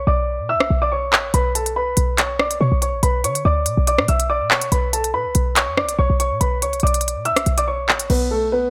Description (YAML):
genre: hip hop, drill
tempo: 142 BPM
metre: 4/4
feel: half-time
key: B minor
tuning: A4 = 440 Hz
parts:
  - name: warm concert grand piano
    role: melody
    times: 0.0-8.7 s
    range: A3 to E6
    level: -23 LUFS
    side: equal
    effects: low-pass filter
  - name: short 808-style bass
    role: bass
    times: 0.0-8.7 s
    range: A1 to D3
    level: -23 LUFS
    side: equal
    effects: none
  - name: drill drum kit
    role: drums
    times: 0.6-8.2 s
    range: crash cymbal, handclaps, hi-hat, rim click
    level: -21 LUFS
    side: equal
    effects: none
room: digital ambience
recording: none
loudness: -19 LUFS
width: mono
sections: 0.0-8.1 A section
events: break 0.0-1.3; hi-hats muted 8.1-8.7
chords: 0.0 Bmadd9; 8.1 N.C.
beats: 0.07 0.49 0.92 | 1.34 1.76 2.18 2.61 | 3.03 3.45 3.87 4.30 | 4.72 5.14 5.56 5.99 | 6.41 6.83 7.25 7.68 | 8.10 8.52